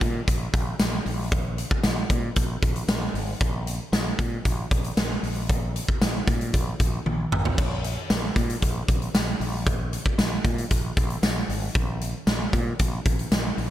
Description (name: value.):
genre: 1980s-style pop.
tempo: 115 BPM.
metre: 4/4.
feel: straight.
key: unclear.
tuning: A4 = 440 Hz.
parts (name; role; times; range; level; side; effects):
mellow fretless electric bass; bass; 0.0-13.7 s; Ab1 to Bb2; -29 LUFS; equal; none.
big rock drum kit; drums; 0.0-13.7 s; crash cymbal, hi-hat, kick drum, snare drum, tambourine, toms; -24 LUFS; equal; gated reverb.
room: light reverb.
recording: bright 1980s-style digital production.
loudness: -22 LUFS.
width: side -13 dB against mid.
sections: 0.0-13.7 A section.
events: drum fill 7.1-7.6.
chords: none.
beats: 0.28 0.80 | 1.32 1.84 2.36 2.88 | 3.41 3.93 4.45 4.97 | 5.49 6.01 6.54 7.06 | 7.58 8.10 8.62 9.15 | 9.67 10.19 10.71 11.23 | 11.75 12.28 12.80 13.32.